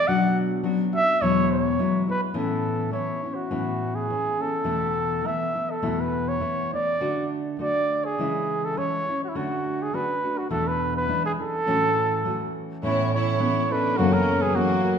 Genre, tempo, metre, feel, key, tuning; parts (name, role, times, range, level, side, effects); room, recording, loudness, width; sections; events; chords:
mexican folk, mariachi; 104 BPM; 2/4; swing 54% on 8ths; A major; A4 = 440 Hz
warm trumpet; melody; 0.0-15.0 s; E4 to F#5; -25 LUFS; right 2 dB
nylon-string guitar; accompaniment; 0.0-15.0 s; E2 to F#4; -26 LUFS; left 2 dB
rich studio violin section; second line; 12.8-15.0 s; A#3 to E4; -30 LUFS; right 2 dB
concert harp; arpeggios; 12.8-15.0 s; F#2 to A4; -25 LUFS; right 1 dB
wet recital hall reverb, RT60 1.4 s; minimal, uncompressed stereo recording; -22 LUFS; side -7 dB against mid
0.0-3.5 A section; 3.5-12.8 B section; 12.8-15.0 A section
0.1 Bm; 1.2 Eadd9; 2.3 Aadd9; 4.7 Esus4; 7.0 D; 8.2 C#m; 9.3 D; 10.5 E7sus4; 11.1 E7; 11.7 A6; 12.8 Aadd9; 14.0 F#7